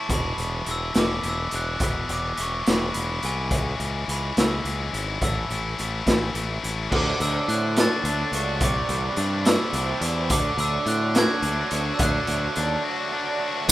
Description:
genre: indie rock.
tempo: 71 BPM (dotted quarters).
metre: 6/8.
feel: straight.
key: unclear.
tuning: A4 = 439 Hz.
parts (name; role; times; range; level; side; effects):
glockenspiel with hard plastic mallets; melody; 0.0-13.1 s; G#5 to A6; -29 LUFS; right 1 dB; none.
high-gain distorted guitar; riff; 0.0-13.7 s; E2 to F#4; -29 LUFS; left 6 dB; distortion.
growling fingered electric bass; bass; 0.1-13.7 s; E1 to A2; -28 LUFS; equal; overdrive.
raw garage drum kit; drums; 0.1-13.7 s; crash cymbal, hi-hat, kick drum, snare drum; -25 LUFS; equal; none.
raw garage guitar; riff; 6.9-13.7 s; C3 to E4; -30 LUFS; right 5 dB; overdrive, analog chorus.
tonewheel organ; sustained chords; 10.3-13.7 s; F#4 to D6; -40 LUFS; equal; none.
room: little or no reverb.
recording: rough home demo mix.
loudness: -22 LUFS.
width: side -15 dB against mid.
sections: 0.0-6.9 A section; 6.9-13.7 B section.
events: none.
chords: 0.1 E; 3.5 C#m; 5.2 A; 6.9 D; 8.6 Cadd9; 10.3 D.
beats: | 0.10 0.95 | 1.81 2.66 | 3.52 4.37 | 5.22 6.07 | 6.92 7.77 | 8.62 9.47 | 10.31 11.16 | 12.01 12.85 | 13.69.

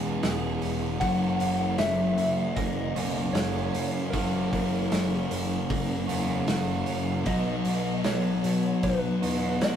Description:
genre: rock, shoegaze and dream pop.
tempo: 77 BPM.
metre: 4/4.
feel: straight.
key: F# mixolydian.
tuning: A4 = 440 Hz.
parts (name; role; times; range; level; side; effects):
twelve-string electric guitar; arpeggios; 0.0-9.8 s; E3 to G#4; -38 LUFS; right 5 dB; none.
biting overdriven guitar; riff; 0.0-9.8 s; E2 to G#4; -32 LUFS; right 6 dB; none.
thick fuzz guitar; riff; 0.0-9.8 s; E2 to B3; -28 LUFS; left 4 dB; distortion.
fuzz picked electric bass; bass; 0.0-9.8 s; E1 to B2; -34 LUFS; equal; overdrive.
loose indie drum kit; drums; 0.2-9.8 s; hi-hat, kick drum, snare drum; -33 LUFS; right 1 dB; none.
soft struck synth lead; melody; 1.0-9.8 s; A#4 to F#5; -32 LUFS; right 1 dB; chorus.
room: wet studio ambience, RT60 0.5 s.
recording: rough rehearsal-room recording.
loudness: -24 LUFS.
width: side -9 dB against mid.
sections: 0.0-9.8 A section.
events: none.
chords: 0.0 E6; 1.0 F#7; 7.3 B.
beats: 0.23 | 1.01 1.79 2.58 3.36 | 4.14 4.92 5.70 6.49 | 7.27 8.05 8.83 9.62.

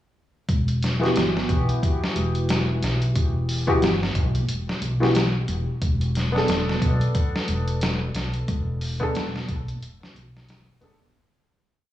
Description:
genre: trip hop.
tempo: 90 BPM.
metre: 4/4.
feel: swing 58% on 16ths.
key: E minor.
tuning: A4 = 441 Hz.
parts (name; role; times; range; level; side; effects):
upright bass; bass; 0.5-11.0 s; E1 to B1; -25 LUFS; equal; none.
trip hop sampler-style drum kit; drums; 0.5-11.0 s; hi-hat, kick drum, snare drum; -25 LUFS; equal; none.
felt-muted upright piano; accompaniment; 1.0-11.0 s; E3 to A4; -26 LUFS; left 1 dB; harmonic tremolo, low-pass filter, tape echo.
room: small room ambience.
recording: worn, warbling old tape, cassette tape, warbly pitch drift, studio reverb.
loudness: -21 LUFS.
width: side -13 dB against mid.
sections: 0.5-11.1 groove.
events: filter sweep on felt piano 0.5-11.1; fade-out 7.6-11.1.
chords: 0.5 Emadd9; 5.8 Bm7/E.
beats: | 0.48 1.15 1.81 2.48 | 3.15 3.81 4.48 5.15 | 5.81 6.48 7.15 7.81 | 8.48 9.15 9.81 10.48.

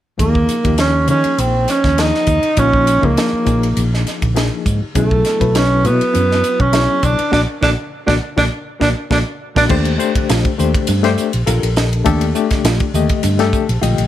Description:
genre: electric jazz fusion.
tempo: 101 BPM.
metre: 4/4.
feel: swing 54% on 16ths.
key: Eb lydian from 9.7 s.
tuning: A4 = 440 Hz.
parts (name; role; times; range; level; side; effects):
breathy tenor saxophone; melody; 0.2-9.6 s; A3 to Eb4; -16 LUFS; right 2 dB; none.
barky reed electric piano; accompaniment; 0.2-14.1 s; D3 to A5; -20 LUFS; left 8 dB; overdrive, fast tremolo.
mellow fretless electric bass; bass; 0.2-14.1 s; Bb1 to Eb3; -17 LUFS; equal; none.
crisp fusion drum kit; drums; 0.2-14.1 s; crash cymbal, hi-hat, kick drum, ride cymbal, snare drum; -20 LUFS; equal; none.
mellow electric guitar; stabs; 5.0-14.0 s; Bb3 to F#4; -24 LUFS; right 7 dB; analog chorus.
room: moderate studio reverb, RT60 0.6 s.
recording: none.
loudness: -13 LUFS.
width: side -12 dB against mid.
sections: 0.2-9.7 A section; 9.7-14.1 B section.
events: band accent 7.3-9.7; reed electric piano fill 8.8-9.7, 13.2-14.1; drum fill 9.1-9.7.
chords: 0.2 Eb9sus4; 5.0 B13sus4; 7.3 Bbaug; 9.7 Ebmaj9.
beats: | 0.20 0.79 1.39 1.99 | 2.58 3.17 3.77 4.36 | 4.96 5.55 6.14 6.74 | 7.33 7.92 8.52 9.11 | 9.70 10.29 10.88 11.47 | 12.06 12.65 13.24 13.83.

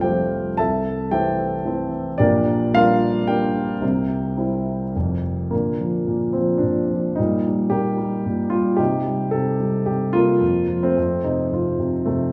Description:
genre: classical, lyrical solo piano.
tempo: 110 BPM.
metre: 3/4.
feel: rubato.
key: F major, Bb major from 5.5 s.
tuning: A4 = 440 Hz.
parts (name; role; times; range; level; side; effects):
dark grand piano; solo; 0.0-12.3 s; F1 to A5; -21 LUFS; equal; none.
room: wet recital hall reverb, RT60 1.6 s.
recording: recorded in a church or concert hall.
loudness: -21 LUFS.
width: mono.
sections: 0.0-5.5 A section; 5.5-12.3 B section.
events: none.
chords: 0.0 Fadd9; 0.6 C6; 2.2 Gm/Bb; 3.8 C; 4.9 Fsus24; 5.5 Bb; 7.2 Eb/Bb; 8.8 Cm; 10.4 Fsus4; 11.0 F.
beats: 0.05 | 0.59 1.12 1.66 | 2.20 2.73 3.28 | 3.82 4.38 4.95 | 5.52 6.08 6.63 | 7.18 7.72 8.25 | 8.79 9.33 9.87 | 10.41 10.97 11.53 | 12.09.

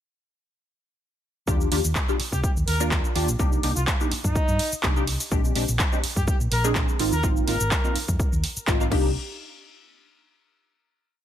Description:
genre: filtered disco house.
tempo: 125 BPM.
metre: 4/4.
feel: swing 54% on 16ths.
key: unclear.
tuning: A4 = 440 Hz.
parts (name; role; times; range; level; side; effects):
funky polysynth comp; accompaniment; 1.5-9.1 s; Ab3 to Bb4; -27 LUFS; equal; chorus, phaser, cassette tape, sidechain pumping.
hollow-body short-scale fingered electric bass; bass; 1.5-9.1 s; Ab1 to C3; -26 LUFS; equal; sidechain pumping.
electronic kick drum; drums; 1.5-9.0 s; none; -24 LUFS; equal; overdrive.
house drum kit; drums; 1.5-9.0 s; cabasa, crash cymbal, handclaps, hi-hat; -28 LUFS; equal; overdrive, sidechain pumping on perc, sidechain pumping on hats, sidechain pumping on cymbals.
warm horn section; melody; 2.3-8.0 s; Eb4 to Bb4; -30 LUFS; left 1 dB; sidechain pumping, dub echo.
room: digital ambience.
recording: none.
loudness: -21 LUFS.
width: side -10 dB against mid.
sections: 1.5-9.2 drop; 9.2-11.1 final hit.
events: drop 1.5-9.2.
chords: 1.5 Ebmaj7; 3.4 Cm9; 5.3 Bb13; 7.0 Ab69; 8.9 Cm9; 9.2 N.C..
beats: | 1.48 1.96 2.44 2.92 | 3.40 3.88 4.36 4.84 | 5.32 5.80 6.28 6.76 | 7.24 7.72 8.20 8.68.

